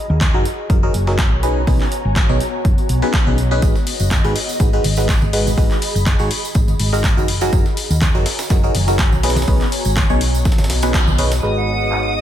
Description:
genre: piano house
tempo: 123 BPM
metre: 4/4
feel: swing 54% on 16ths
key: unclear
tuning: A4 = 438 Hz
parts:
  - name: ethereal airy pad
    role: texture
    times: 0.0-12.2 s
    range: B3 to B5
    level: -26 LUFS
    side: equal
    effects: ensemble chorus, built-in reverb, sidechain pumping
  - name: hollow-body short-scale fingered electric bass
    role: bass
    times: 0.1-12.2 s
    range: F#1 to D#2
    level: -19 LUFS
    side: equal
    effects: sidechain pumping, low-pass filter
  - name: breakbeat sampler-style drum kit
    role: drums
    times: 0.2-11.4 s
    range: hi-hat, snare drum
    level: -30 LUFS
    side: right 1 dB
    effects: sidechain pumping on hats, high-pass filter on hats, high-pass filter on snare
  - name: electronic kick drum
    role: drums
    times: 0.2-11.0 s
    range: none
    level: -17 LUFS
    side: equal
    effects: none
  - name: punchy analog drum machine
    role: drums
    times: 0.2-12.0 s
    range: handclaps, hi-hat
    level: -24 LUFS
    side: left 1 dB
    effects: low-pass filter on snare, low-pass filter on hats, low-pass filter on room
  - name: barking FM electric piano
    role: riff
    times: 0.3-12.2 s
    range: B2 to C#5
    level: -22 LUFS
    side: equal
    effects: phaser, sidechain pumping, low-pass filter, ping-pong delay
  - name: tambourine and congas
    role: percussion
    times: 3.6-11.4 s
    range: none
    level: -27 LUFS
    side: right 2 dB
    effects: none
  - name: warm studio violin section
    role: sustained chords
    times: 11.4-12.2 s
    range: D#6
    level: -24 LUFS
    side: equal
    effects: sidechain pumping
  - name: bright silver concert flute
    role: melody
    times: 11.6-12.2 s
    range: D#5 to F#5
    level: -22 LUFS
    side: right 2 dB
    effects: none
room: light reverb, digital ambience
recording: none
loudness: -14 LUFS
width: side -11 dB against mid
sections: 0.0-11.4 A section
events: band accent 10.9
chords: 0.0 F#69; 9.2 B69; 11.4 G#m7

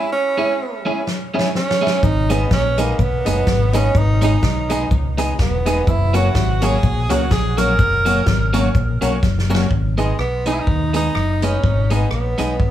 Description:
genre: ska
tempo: 125 BPM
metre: 4/4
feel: swing 56% on 8ths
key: G# minor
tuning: A4 = 440 Hz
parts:
  - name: breathy tenor saxophone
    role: melody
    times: 0.0-12.7 s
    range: G#3 to A#4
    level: -22 LUFS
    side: right 3 dB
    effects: dub echo
  - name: clean electric guitar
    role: accompaniment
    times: 0.0-12.5 s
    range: F#3 to G#4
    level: -22 LUFS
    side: right 3 dB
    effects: none
  - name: honky-tonk upright piano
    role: stabs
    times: 0.0-12.5 s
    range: C#4 to E5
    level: -26 LUFS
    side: left 6 dB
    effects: none
  - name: swinging big-band drum kit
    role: drums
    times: 1.1-12.7 s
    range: hi-hat, kick drum, rim click, snare drum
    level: -20 LUFS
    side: left 1 dB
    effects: none
  - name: deep dub fingered electric bass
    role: bass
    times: 2.0-12.7 s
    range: E1 to D#2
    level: -19 LUFS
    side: equal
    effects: none
  - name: cabasa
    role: percussion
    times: 2.0-9.6 s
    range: none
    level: -44 LUFS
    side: left 5 dB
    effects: none
room: light reverb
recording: studio ambience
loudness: -15 LUFS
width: side -12 dB against mid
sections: 0.0-9.7 A section; 9.7-12.7 B section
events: drum fill 1.1-2.0, 9.2-9.7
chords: 0.0 C#m; 2.0 G#m; 5.9 F#; 9.7 G#m

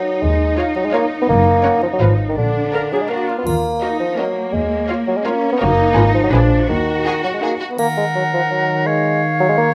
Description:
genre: cinematic, playful, whimsical film cue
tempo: 168 BPM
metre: 3/4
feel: straight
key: Eb minor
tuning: A4 = 440 Hz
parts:
  - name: rich studio violin section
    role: melody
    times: 0.0-7.7 s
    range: Gb4 to Gb5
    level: -31 LUFS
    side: equal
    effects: none
  - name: rich studio violin section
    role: second line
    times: 0.0-7.7 s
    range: Gb4 to Db5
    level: -30 LUFS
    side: equal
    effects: none
  - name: mellow bassoon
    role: accompaniment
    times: 0.0-9.7 s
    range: D3 to Cb4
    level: -20 LUFS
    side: equal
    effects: none
  - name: warm studio viola section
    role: accompaniment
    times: 0.0-7.7 s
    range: Db4 to Bb4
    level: -28 LUFS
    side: equal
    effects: none
  - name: rich studio cello section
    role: bass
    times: 0.0-7.6 s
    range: Bb3 to Gb4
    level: -25 LUFS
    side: equal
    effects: none
  - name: rich studio double bass section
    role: bass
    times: 0.2-7.0 s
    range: Gb1 to Eb2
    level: -21 LUFS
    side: equal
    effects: none
  - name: triangle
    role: percussion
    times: 3.5-4.1, 7.8-8.5 s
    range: none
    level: -41 LUFS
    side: equal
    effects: none
  - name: bright oboe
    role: second line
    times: 7.8-9.7 s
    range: Bb4 to Db5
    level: -23 LUFS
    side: equal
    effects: none
  - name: concert flute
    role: second line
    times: 7.8-9.7 s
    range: F5 to Gb5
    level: -24 LUFS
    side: equal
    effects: none
  - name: dark French horn section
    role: sustained chords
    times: 7.8-9.7 s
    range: Eb3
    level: -24 LUFS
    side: equal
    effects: none
room: light reverb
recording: close, detailed microphones, vinyl crackle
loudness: -17 LUFS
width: mono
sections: 0.0-7.8 A section; 7.8-9.7 A section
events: none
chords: 0.2 Db/Eb; 1.3 Gb; 2.0 Fdim/Ab; 2.4 Bb; 3.5 Ebm; 4.5 Db/Eb; 5.6 Gb; 6.0 Fdim/Ab; 6.3 Bb7b9; 6.7 Ebm; 8.9 Db/Eb

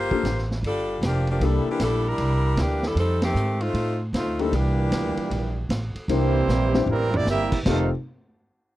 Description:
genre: jazz, big band swing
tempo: 154 BPM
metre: 4/4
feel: swing 64% on 8ths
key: F major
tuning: A4 = 440 Hz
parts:
  - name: edgy saxophone section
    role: melody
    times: 0.0-5.7 s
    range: Eb3 to C5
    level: -26 LUFS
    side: left 1 dB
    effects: none
  - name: upright bass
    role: bass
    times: 0.0-7.9 s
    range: F1 to A2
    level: -24 LUFS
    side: right 1 dB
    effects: none
  - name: warm baby grand piano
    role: accompaniment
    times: 0.1-2.0, 4.4-7.9 s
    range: Bb3 to C5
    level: -26 LUFS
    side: left 7 dB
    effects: none
  - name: vintage drum kit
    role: drums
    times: 0.1-7.8 s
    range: crash cymbal, hi-hat, kick drum, ride cymbal, snare drum, toms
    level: -30 LUFS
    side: right 1 dB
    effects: none
  - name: clear trombone section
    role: second line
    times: 4.5-7.9 s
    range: F2 to E4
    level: -28 LUFS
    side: right 5 dB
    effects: none
  - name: clear trumpet section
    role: melody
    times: 6.1-7.9 s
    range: G3 to F5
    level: -25 LUFS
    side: right 2 dB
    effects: none
room: little or no reverb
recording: dry, close 1970s-style studio recording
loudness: -21 LUFS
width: side -15 dB against mid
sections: 0.0-6.1 A section; 6.1-7.7 B section; 7.7-8.8 C section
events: band accent 3.2; drum fill 6.5-7.3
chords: 0.0 Gm7; 1.4 C13; 3.0 F13; 4.5 C13; 6.1 C7; 7.7 F9

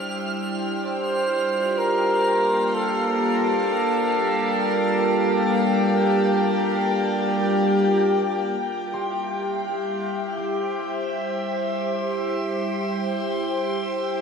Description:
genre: ambient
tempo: free time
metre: none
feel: none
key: unclear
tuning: A4 = 443 Hz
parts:
  - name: evolving wavetable pad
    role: sustained chords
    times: 0.0-14.2 s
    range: G3 to C5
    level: -22 LUFS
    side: equal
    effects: phaser, built-in reverb
  - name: pedal harmonium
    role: drone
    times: 0.0-8.6 s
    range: G3 to D4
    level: -31 LUFS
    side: left 3 dB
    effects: none
  - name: twinkling granular texture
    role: texture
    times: 0.0-8.5 s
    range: F6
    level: -37 LUFS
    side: right 2 dB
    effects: built-in reverb
  - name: mellow flugelhorn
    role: melody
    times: 0.8-7.5 s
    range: A4 to C5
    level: -26 LUFS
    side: right 1 dB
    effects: tape echo
  - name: concert harp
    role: arpeggios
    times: 8.9-12.9 s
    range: C6 to D6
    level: -40 LUFS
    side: right 1 dB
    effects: none
room: wet shimmer reverb, RT60 8.1 s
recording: cassette tape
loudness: -20 LUFS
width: side -6 dB against mid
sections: 0.0-8.5 A section; 8.5-14.2 B section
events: fade-in on ambient pad 0.0-8.5; fade-in on harmonium 0.0-8.5; fade-out on synth texture 0.0-8.5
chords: 0.0 Fmaj7(no3)/G; 0.8 Gm9; 8.5 Cadd9/G

